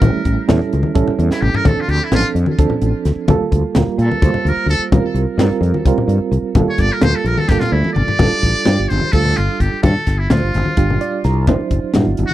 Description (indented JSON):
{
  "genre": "electric jazz fusion",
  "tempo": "257 BPM (eighths)",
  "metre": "7/8",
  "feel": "straight",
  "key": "unclear",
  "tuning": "A4 = 440 Hz",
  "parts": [
    { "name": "trumpet with metal mute", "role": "melody", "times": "0.0-12.3 s", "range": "E4 to D5", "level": "-22 LUFS", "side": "equal", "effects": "tape echo" },
    { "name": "reed electric piano", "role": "accompaniment", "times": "0.0-12.3 s", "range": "F3 to Bb5", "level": "-20 LUFS", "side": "right 7 dB", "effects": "fast tremolo" },
    { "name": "fretless electric bass", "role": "bass", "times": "0.0-12.3 s", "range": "F#1 to Bb2", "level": "-16 LUFS", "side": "left 1 dB", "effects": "none" },
    { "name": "crisp fusion drum kit", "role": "drums", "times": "0.0-12.3 s", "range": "crash cymbal, hi-hat, kick drum, snare drum, toms", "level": "-17 LUFS", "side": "left 1 dB", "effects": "none" },
    { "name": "congas", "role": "percussion", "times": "0.0-12.3 s", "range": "none", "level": "-20 LUFS", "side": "left 3 dB", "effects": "none" }
  ],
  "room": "little or no reverb",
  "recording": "dry, close 1970s-style studio recording",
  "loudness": "-13 LUFS",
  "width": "side -14 dB against mid",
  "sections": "0.0-8.2 A section; 8.2-12.3 B section",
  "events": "muted trumpet solo 0.0-8.2; drum fill 1.3-1.7, 7.5-8.2; reed electric piano fill 10.8-11.5",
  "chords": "0.0 A7; 1.7 Dm7; 3.3 Gm9/D; 4.9 C7sus4; 6.6 Gm9; 8.2 F69/G; 11.5 D9"
}